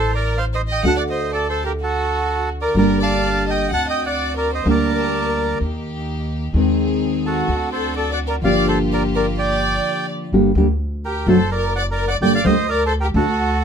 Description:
tango; 127 BPM; 4/4; rubato; G minor; A4 = 437 Hz
bandoneon; melody; 0.0-13.6 s; F#4 to A5; -22 LUFS; right 4 dB
warm chamber violin section; second line; 0.0-13.6 s; F#4 to F#5; -24 LUFS; left 2 dB
upright bass; bass; 0.0-13.6 s; F#1 to Eb2; -23 LUFS; equal
nylon-string guitar; accompaniment; 0.8-13.2 s; C3 to A4; -19 LUFS; equal
bright chamber string section; stabs; 2.8-10.2 s; Bb3 to A5; -29 LUFS; equal
light reverb; close, detailed microphones; -17 LUFS; side -7 dB against mid
0.0-10.3 A section; 10.3-13.6 A section
break 9.8-10.3
0.0 Adim; 0.8 D; 2.8 Gm; 3.7 D7; 4.7 Gmadd9/D; 5.6 Eb; 6.5 Ab/Eb; 7.5 D7; 8.4 Gm7; 10.3 Gm; 11.3 D7/F#; 12.2 Gmadd9

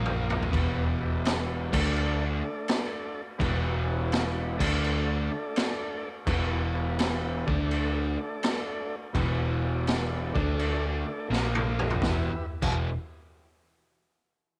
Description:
blues rock power trio and southern rock; 84 BPM; 4/4; swing 68% on 8ths; E minor; A4 = 440 Hz
tonewheel organ; sustained chords; 0.0-12.5 s; A3 to E#5; -39 LUFS; equal; overdrive, slow rotary speaker
crunchy overdriven guitar; riff; 0.0-12.9 s; E2 to D4; -34 LUFS; equal
vintage muted fingered electric bass; bass; 0.0-13.0 s; E1 to D2; -32 LUFS; equal; transformer saturation
raw garage drum kit; drums; 0.1-12.7 s; crash cymbal, kick drum, snare drum, toms; -33 LUFS; equal
light reverb, small room ambience; -29 LUFS; mono
0.5-12.0 A section; 12.0-14.6 B section
drum fill 0.0-0.5, 11.3-12.0
0.0 A#5; 0.5 Em; 1.6 D5; 3.4 Em; 4.5 D5; 6.3 Em; 7.3 D5; 9.1 Em; 10.2 D5; 11.3 A#5; 12.0 Em

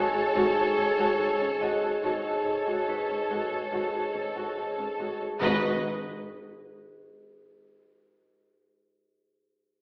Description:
cinematic, suspense film score; 71 BPM; 4/4; straight; G# phrygian; A4 = 440 Hz
warm studio violin section; melody; 0.0-5.9 s; C#5 to D#5; -38 LUFS; equal
rich studio violin section; second line; 0.0-5.9 s; A4 to B4; -34 LUFS; equal
dark studio viola section; accompaniment; 0.0-5.9 s; C#4 to F#4; -35 LUFS; equal
concert harp; riff; 0.0-8.8 s; G#2 to G#3; -36 LUFS; equal
deep rumbling drone; drone; 0.0-5.9 s; G#1; -58 LUFS; equal
vibraphone with medium hard mallets; texture; 0.0-5.4 s; G#4 to G#5; -35 LUFS; equal
warm studio cello section; bass; 0.1-5.9 s; G#2; -40 LUFS; equal
dark studio double bass section; bass; 0.3-5.9 s; G#1; -46 LUFS; equal
timpani; percussion; 5.4-5.8 s; G#2; -40 LUFS; equal
wet scoring stage reverb, RT60 1.8 s; heard from further back in the room, AM radio sound; -28 LUFS; mono
0.0-5.4 A section; 5.4-8.8 B section
0.0 F#madd9/G#; 5.4 G#7(no3)

